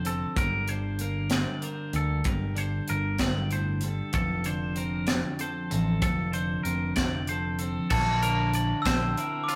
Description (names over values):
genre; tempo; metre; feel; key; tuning
math rock and midwest emo; 64 BPM (dotted quarters); 6/8; straight; D minor; A4 = 442 Hz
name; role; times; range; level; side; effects
twelve-string electric guitar; accompaniment; 0.0-9.6 s; F2 to Bb4; -35 LUFS; equal; none
twangy electric guitar; arpeggios; 0.0-9.6 s; F4 to D5; -36 LUFS; equal; none
picked electric bass; bass; 0.0-9.1 s; F1 to D2; -32 LUFS; equal; none
crisp fusion drum kit; drums; 0.1-9.6 s; crash cymbal, hi-hat, kick drum, snare drum; -33 LUFS; equal; none
glockenspiel with soft plastic mallets; melody; 7.9-9.6 s; A5 to E6; -31 LUFS; equal; none
room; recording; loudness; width
moderate stone room reverb, RT60 1.4 s; rough rehearsal-room recording; -28 LUFS; mono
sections
0.0-7.9 A section; 7.9-9.6 B section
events
none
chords
0.4 Gm; 4.1 Dm7/F; 7.9 Bbmaj9#11